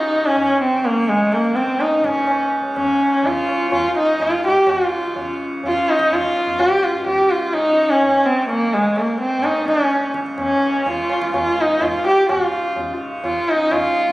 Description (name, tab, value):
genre	indian classical, Hindustani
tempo	126 BPM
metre	4/4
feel	straight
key	Db raga yaman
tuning	A4 = 440 Hz
part	warm sarangi	melody	0.0-14.1 s	Ab3 to G4	-16 LUFS	equal	none
part	tanpura	drone	0.0-14.1 s	Db2 to Db3	-27 LUFS	right 1 dB	none
part	tabla	percussion	0.4-14.1 s	none	-29 LUFS	right 1 dB	none
room	moderate recital hall reverb, RT60 1.4 s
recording	recorded on a phone in the room, club reverb, compression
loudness	-16 LUFS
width	side -18 dB against mid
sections	0.0-12.3 A section; 12.3-14.1 B section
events	none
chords	none